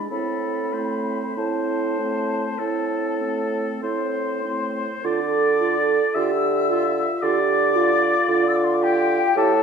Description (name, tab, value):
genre	classical, slow romantic movement for wind quintet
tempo	48-56 BPM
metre	4/4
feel	rubato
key	A minor, D minor from 5.0 s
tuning	A4 = 440 Hz
part	mellow hollow silver concert flute	melody	0.0-9.6 s	G5 to E6	-27 LUFS	left 8 dB	none
part	clear clarinet	accompaniment	0.0-9.5 s	C4 to G4	-28 LUFS	right 7 dB	none
part	warm French horn	accompaniment	0.0-9.6 s	G#3 to A4	-25 LUFS	right 1 dB	none
part	warm oboe	second line	0.1-9.6 s	G4 to E5	-27 LUFS	left 3 dB	none
part	mellow bassoon	bass	0.1-9.6 s	A2 to D3	-24 LUFS	right 3 dB	none
room	wet scoring stage reverb, RT60 1.5 s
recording	minimal, uncompressed stereo recording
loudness	-19 LUFS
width	side -6 dB against mid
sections	0.0-5.0 A section; 5.0-9.6 B section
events	none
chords	0.1 Am; 5.0 Dm